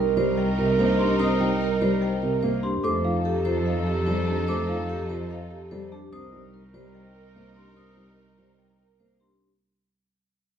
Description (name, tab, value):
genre	classical, minimalist pattern music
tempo	146 BPM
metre	4/4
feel	straight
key	C dorian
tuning	A4 = 438 Hz
part	vibraphone with medium hard mallets	melody	0.0-9.5 s	G4 to G5	-33 LUFS	left 4 dB	none
part	clear clarinet	second line	0.0-9.2 s	A4 to Bb4	-34 LUFS	left 1 dB	none
part	dark grand piano	accompaniment	0.0-9.3 s	C3 to C4	-29 LUFS	left 2 dB	none
part	warm symphonic string section	sustained chords	0.0-9.2 s	Eb4 to Bb4	-33 LUFS	equal	none
part	vibraphone with soft mallets	arpeggios	0.0-9.5 s	D4 to C5	-29 LUFS	right 6 dB	none
part	worn celesta	arpeggios	0.0-9.5 s	Eb5 to Eb6	-34 LUFS	left 3 dB	none
part	warm cello	bass	0.0-9.3 s	C2 to F2	-28 LUFS	right 2 dB	none
room	moderate large studio reverb, RT60 1.1 s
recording	heard from further back in the room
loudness	-22 LUFS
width	side -8 dB against mid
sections	0.0-9.4 A section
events	fade-out 0.0-9.4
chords	0.0 Cm7; 2.8 F9; 6.1 Cm7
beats	0.37 0.78 | 1.19 1.60 2.02 2.42 | 2.84 3.25 3.66 4.07 | 4.48 4.89 5.30 5.71 | 6.12 6.54 6.95 7.36 | 7.77 8.18 8.59 9.00